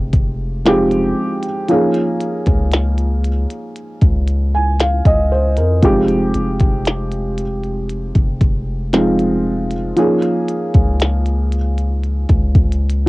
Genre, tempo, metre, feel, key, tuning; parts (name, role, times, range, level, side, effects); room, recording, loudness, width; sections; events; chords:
contemporary R&B; 58 BPM; 4/4; straight; A4 = 440 Hz
felt-muted upright piano; accompaniment; 0.0-13.1 s; F3 to Ab5; -17 LUFS; equal; cassette tape
long sustained 808-style bass; bass; 0.0-13.1 s; F1 to F2; -18 LUFS; equal
glitchy drum kit; drums; 0.1-13.1 s; hi-hat, kick drum, snare drum; -15 LUFS; equal; cassette tape
little or no reverb; home recording on cassette; -14 LUFS; side -21 dB against mid
0.0-13.1 A section
0.0 Fm9; 1.7 Db6; 5.8 Fm9; 10.0 Db6